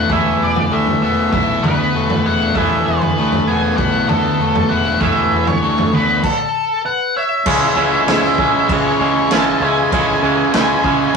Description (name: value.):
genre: indie rock.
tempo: 98 BPM.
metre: 4/4.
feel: straight.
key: unclear.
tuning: A4 = 443 Hz.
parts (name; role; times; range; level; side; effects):
octave-fuzz lead guitar; melody; 0.0-11.2 s; A4 to A5; -19 LUFS; equal; distortion.
crunchy overdriven guitar; riff; 0.0-11.2 s; C#3 to E4; -18 LUFS; left 4 dB; none.
twangy electric guitar; riff; 0.0-11.2 s; C#3 to E4; -19 LUFS; right 5 dB; none.
fuzz fingered electric bass; bass; 0.0-11.1 s; E1 to D2; -23 LUFS; right 1 dB; overdrive.
vintage drum kit; drums; 0.1-11.2 s; crash cymbal, kick drum, ride cymbal, snare drum, toms; -21 LUFS; right 1 dB; none.
overdriven tine electric piano; second line; 6.9-11.1 s; G#4 to E5; -27 LUFS; right 3 dB; none.
room: moderate studio reverb, RT60 0.6 s.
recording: rough rehearsal-room recording, warm saturation, small room ambience.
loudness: -13 LUFS.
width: side -5 dB against mid.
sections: 0.0-7.5 A section; 7.5-11.2 B section.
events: stop 6.2-7.5.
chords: 0.0 Esus4; 7.5 C#m.